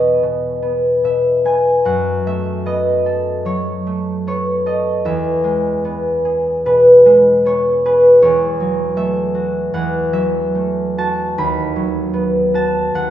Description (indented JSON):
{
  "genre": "classical, solo harp piece",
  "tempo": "76 BPM",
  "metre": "4/4",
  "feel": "uneven beats, rubato",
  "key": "E major",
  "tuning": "A4 = 438 Hz",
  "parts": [
    { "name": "concert harp", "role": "solo", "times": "0.0-13.1 s", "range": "D#2 to B5", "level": "-13 LUFS", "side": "equal", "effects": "none" }
  ],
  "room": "wet scoring stage reverb, RT60 1.8 s",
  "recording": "recorded in a church or concert hall, nothing above 7.7 kHz",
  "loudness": "-13 LUFS",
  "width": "side -11 dB against mid",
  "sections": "0.0-13.1 A section",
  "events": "none",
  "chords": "0.0 E5; 1.9 B7/F#; 5.0 E; 8.2 F#m7/E; 11.4 B7/D#",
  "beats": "0.23 1.05 | 1.86 2.66 3.46 4.27 | 5.05 5.84 6.65 7.44 | 8.21 8.97 9.73 10.55 | 11.38 12.15 12.95"
}